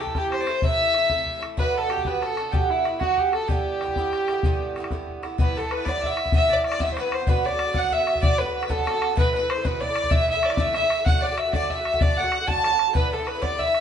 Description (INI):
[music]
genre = celtic folk, Celtic slide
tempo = 127 BPM (dotted quarters)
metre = 12/8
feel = straight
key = E minor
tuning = A4 = 440 Hz
[part]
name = dark fiddle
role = melody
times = 0.0-13.8 s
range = E4 to A5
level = -24 LUFS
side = right 1 dB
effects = none
[part]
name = clear fiddle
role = second line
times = 0.0-13.8 s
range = E4 to A5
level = -29 LUFS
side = left 4 dB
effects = none
[part]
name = Irish bouzouki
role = accompaniment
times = 0.0-13.8 s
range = G2 to F#4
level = -29 LUFS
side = right 6 dB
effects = none
[part]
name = bodhran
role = percussion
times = 0.1-13.8 s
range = none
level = -25 LUFS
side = left 1 dB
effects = none
[sound]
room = wet studio reverb, RT60 0.9 s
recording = band playing live in one room, nothing above 11.0 kHz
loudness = -20 LUFS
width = side -8 dB against mid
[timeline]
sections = 0.0-5.4 A section; 5.4-13.8 B section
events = none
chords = 0.0 Am; 1.6 Bm; 3.5 Em7; 5.4 Em; 7.3 Bm7; 9.2 Asus2; 11.1 D; 13.0 Em7